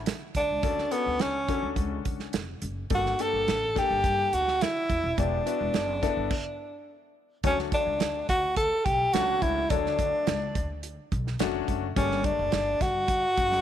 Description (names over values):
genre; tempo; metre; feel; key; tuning
uptempo 1960s-style soul; 106 BPM; 4/4; straight; D major; A4 = 441 Hz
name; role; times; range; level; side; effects
breathy tenor saxophone; melody; 0.0-13.6 s; B3 to A4; -26 LUFS; equal; none
clear grand piano; accompaniment; 0.0-12.9 s; F#3 to C#5; -33 LUFS; left 14 dB; none
upright bass; bass; 0.0-13.6 s; Eb1 to G2; -34 LUFS; left 1 dB; none
natural country drum kit; drums; 0.1-13.6 s; crash cymbal, hi-hat, kick drum, snare drum; -31 LUFS; right 2 dB; none
room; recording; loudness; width
light reverb, small room ambience; 1960s-style stereo; -24 LUFS; side -10 dB against mid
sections
0.0-7.4 A section; 7.4-13.6 B section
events
stop 6.3-7.4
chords
0.0 Dmaj7; 2.9 Gmadd9; 5.2 Em7; 7.4 Dmaj7; 12.0 Gmadd9